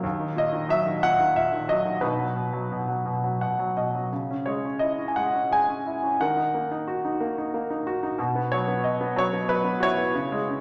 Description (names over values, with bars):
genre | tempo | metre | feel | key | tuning
classical, lyrical solo piano | 84-94 BPM | 3/4 | rubato | unclear | A4 = 439 Hz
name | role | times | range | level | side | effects
clear concert grand piano | solo | 0.0-10.6 s | D#2 to G#5 | -26 LUFS | equal | none
room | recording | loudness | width
wet scoring stage reverb, RT60 1.5 s | none | -26 LUFS | mono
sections
0.0-10.6 A section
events
grand piano fill 3.0-4.1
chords
0.0 D#m; 2.0 B; 4.1 C#m; 6.2 D#m; 8.2 B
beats
| 0.04 0.70 1.37 | 2.02 2.70 3.40 | 4.11 4.81 5.51 | 6.20 6.87 7.53 | 8.18 8.84 9.49 | 10.14